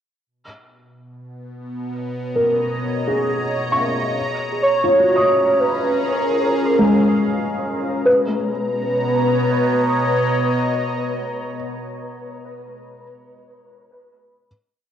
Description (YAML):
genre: ambient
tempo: free time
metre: none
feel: none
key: B lydian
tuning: A4 = 440 Hz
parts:
  - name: evolving wavetable pad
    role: sustained chords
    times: 1.2-12.1 s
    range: B2 to A#5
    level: -22 LUFS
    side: equal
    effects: phaser, built-in reverb, cassette tape
  - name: felt-muted upright piano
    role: arpeggios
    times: 2.4-14.5 s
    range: G#3 to D#6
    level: -21 LUFS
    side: left 1 dB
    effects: cassette tape, analog delay
  - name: warm velvety synth lead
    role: melody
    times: 4.6-11.5 s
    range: A#4 to C#5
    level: -20 LUFS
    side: right 1 dB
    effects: chorus, analog delay
room: wet spring reverb, RT60 1.8 s, small room ambience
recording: home recording on cassette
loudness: -17 LUFS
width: side -9 dB against mid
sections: 0.3-8.1 A section; 8.1-12.0 final chord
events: fade-in on ambient pad 0.3-8.1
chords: 0.3 Bmaj7; 4.2 F#maj7; 8.1 Bmaj7